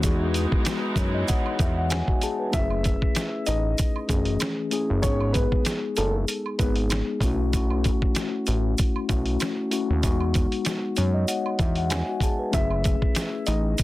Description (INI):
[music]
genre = hip hop, boom-bap hip-hop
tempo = 96 BPM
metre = 4/4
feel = swing 55% on 16ths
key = F# dorian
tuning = A4 = 440 Hz
[part]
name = mellow tine electric piano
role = accompaniment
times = 0.0-13.8 s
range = E3 to A5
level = -27 LUFS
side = left 3 dB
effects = slow stereo tremolo, cassette tape, high-pass filter, low-pass filter
[part]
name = warm studio string section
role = sustained chords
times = 0.0-2.5 s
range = E3 to D#4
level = -33 LUFS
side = right 2 dB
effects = high-pass filter, low-pass filter
[part]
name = fat analog bass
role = bass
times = 0.0-13.8 s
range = F#1 to F#2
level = -25 LUFS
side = equal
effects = none
[part]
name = lo-fi sampler-style drum kit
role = drums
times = 0.0-13.8 s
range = hi-hat, kick drum, snare drum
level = -25 LUFS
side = equal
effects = none
[part]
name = tube shaker and woodblock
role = percussion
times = 0.0-13.8 s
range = none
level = -38 LUFS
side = right 8 dB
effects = none
[part]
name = dark upright piano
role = melody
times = 2.5-6.8, 12.5-13.8 s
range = A3 to E5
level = -30 LUFS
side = left 1 dB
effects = high-pass filter, low-pass filter, digital delay
[sound]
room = light reverb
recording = dense, heavily limited modern master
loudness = -22 LUFS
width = side -17 dB against mid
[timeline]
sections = 0.0-2.5 A section; 2.5-13.8 B section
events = none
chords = 0.0 Emaj7; 2.5 F#m7; 5.0 G#m; 7.2 B7sus4; 10.0 Emaj7; 12.5 F#m7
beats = | 0.03 0.66 1.28 1.91 | 2.53 3.16 3.78 4.41 | 5.03 5.66 6.28 6.91 | 7.53 8.16 8.78 9.41 | 10.03 10.66 11.28 11.91 | 12.53 13.16 13.78